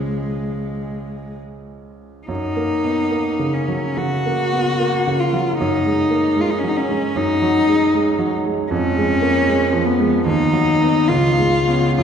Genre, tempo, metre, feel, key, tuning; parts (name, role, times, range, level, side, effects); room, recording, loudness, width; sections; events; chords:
classical, romantic duo for cello and grand piano; 74 BPM; 4/4; uneven beats, rubato; A4 = 439 Hz
rich cello; melody; 0.0-12.0 s; G#3 to F#4; -18 LUFS; left 2 dB
bright concert grand piano; accompaniment; 0.0-12.0 s; C#2 to C#4; -20 LUFS; right 2 dB
wet concert hall reverb, RT60 2.1 s; heard from further back in the room; -16 LUFS; side -7 dB against mid
0.0-12.0 A section
0.0 C#; 2.3 F#; 5.6 G#5/F#; 8.7 C#/E#; 10.3 B/D#; 11.1 C#7